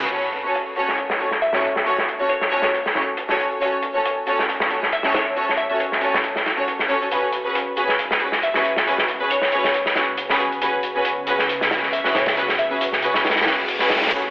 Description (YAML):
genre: breakbeat, breaks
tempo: 137 BPM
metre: 4/4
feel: swing 54% on 16ths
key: F# minor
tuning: A4 = 440 Hz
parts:
  - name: distorted electric guitar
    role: riff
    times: 0.0-0.1, 14.1-14.2 s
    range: C#3 to F#3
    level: -30 LUFS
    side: equal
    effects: none
  - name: dark studio string section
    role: stabs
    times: 0.0-14.2 s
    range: C#4 to C#5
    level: -21 LUFS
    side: equal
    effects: low-pass filter, tape echo
  - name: dark detuned saw bass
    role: bass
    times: 0.0-0.1, 14.1-14.3 s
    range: F#1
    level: -43 LUFS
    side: equal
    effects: none
  - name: crunchy breakbeat drum kit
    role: drums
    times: 0.0-14.2 s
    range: hi-hat, kick drum, snare drum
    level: -21 LUFS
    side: equal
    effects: low-pass filter on kick, low-pass filter on hats, low-pass filter on snare, low-pass filter on room
  - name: dark analog pad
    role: sustained chords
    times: 3.6-14.3 s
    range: C#3 to B4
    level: -38 LUFS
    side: equal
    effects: chorus, phaser, sidechain pumping
  - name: sub drop, reverse cymbal and riser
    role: sound effects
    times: 0.1-1.9, 13.5-14.3 s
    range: none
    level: -25 LUFS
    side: left 2 dB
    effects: none
  - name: glassy wavetable pluck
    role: melody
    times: 1.4-5.8, 8.4-12.8 s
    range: C#5 to E5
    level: -25 LUFS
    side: equal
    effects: chorus, telephone sound, tape echo
room: moderate echo chamber reverb, RT60 2.4 s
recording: echo-heavy mix, telephone sound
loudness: -18 LUFS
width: side -22 dB against mid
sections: 0.1-14.1 A section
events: impact 0.1-1.9; filter sweep on analog synth pad 0.1-14.1; reverse cymbal 13.5-14.1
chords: 0.1 F#m; 7.1 C#7sus4